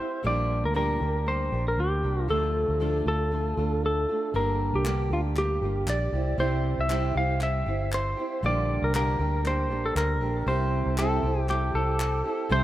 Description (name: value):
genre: acoustic pop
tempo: 118 BPM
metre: 4/4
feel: swing 55% on 16ths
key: unclear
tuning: A4 = 440 Hz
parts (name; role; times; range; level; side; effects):
- clean lap steel guitar; melody; 0.0-12.6 s; F4 to F5; -28 LUFS; equal; digital delay
- fingerpicked steel-string acoustic guitar; accompaniment; 0.0-12.6 s; G2 to G4; -31 LUFS; right 2 dB; none
- vintage muted fingered electric bass; bass; 0.2-12.6 s; G1 to D2; -28 LUFS; equal; none
- group handclap; percussion; 4.9-12.1 s; none; -39 LUFS; left 2 dB; none
room: moderate plate reverb, RT60 3.6 s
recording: rough home demo mix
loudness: -24 LUFS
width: side -14 dB against mid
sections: 0.0-12.5 A section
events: none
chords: 0.3 Gm/Bb; 2.3 Dm; 4.3 Gm; 6.1 C; 8.4 Gm/Bb; 10.5 C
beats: | 0.25 0.76 1.27 1.79 | 2.30 2.81 3.32 3.83 | 4.34 4.85 5.36 5.87 | 6.38 6.90 7.41 7.92 | 8.43 8.94 9.45 9.96 | 10.47 10.98 11.49 12.00 | 12.51